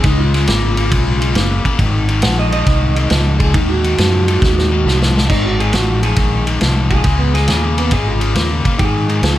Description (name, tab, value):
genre	electric blues shuffle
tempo	137 BPM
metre	4/4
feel	swing 68% on 8ths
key	Ab mixolydian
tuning	A4 = 440 Hz
part	electric guitar through a small old amp	melody	0.0-9.4 s	Cb4 to Gb5	-21 LUFS	right 2 dB	warbly pitch drift
part	cranked stack guitar	riff	0.0-9.4 s	Ab2 to Bb3	-19 LUFS	left 5 dB	overdrive
part	fingered electric bass	bass	0.0-9.4 s	Gb1 to Ab2	-16 LUFS	equal	none
part	vintage drum kit	drums	0.0-9.4 s	crash cymbal, kick drum, ride cymbal, snare drum	-17 LUFS	equal	none
room	light reverb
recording	none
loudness	-12 LUFS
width	side -14 dB against mid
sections	0.0-5.3 A section; 5.3-9.4 A section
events	clean electric guitar solo 0.0-5.3, 5.3-9.4; drum fill 4.4-5.3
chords	0.0 Db7; 1.8 Ab7; 5.3 Abadd9; 7.0 Dbadd9; 8.8 Ab5